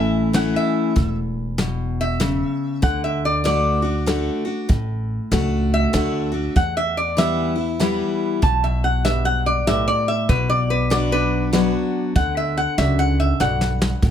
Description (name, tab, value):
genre	honky-tonk and classic country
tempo	96 BPM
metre	3/4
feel	swing 62% on 8ths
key	D major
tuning	A4 = 440 Hz
part	lap resonator guitar	melody	0.0-14.0 s	B4 to A5	-22 LUFS	equal	none
part	picked steel-string acoustic guitar	accompaniment	0.0-14.1 s	E2 to F#4	-22 LUFS	left 2 dB	none
part	upright bass	bass	0.0-14.1 s	E1 to E2	-23 LUFS	equal	none
part	soft brush drum kit	drums	0.3-14.1 s	hi-hat, kick drum, snare drum	-22 LUFS	equal	none
part	clear upright piano	accompaniment	7.2-13.9 s	F#4 to E5	-30 LUFS	right 8 dB	none
room	light reverb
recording	close, detailed microphones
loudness	-18 LUFS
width	side -9 dB against mid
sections	0.0-14.0 A section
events	resonator guitar played with a steel bar solo 0.0-14.0; drum fill 13.4-14.0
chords	0.0 A; 2.8 D; 6.6 Em; 10.3 Bm; 12.2 D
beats	0.34 | 0.96 1.58 2.21 | 2.83 3.45 4.07 | 4.70 5.32 5.94 | 6.56 7.18 7.80 | 8.43 9.05 9.67 | 10.29 10.91 11.54 | 12.16 12.78 13.40 | 14.02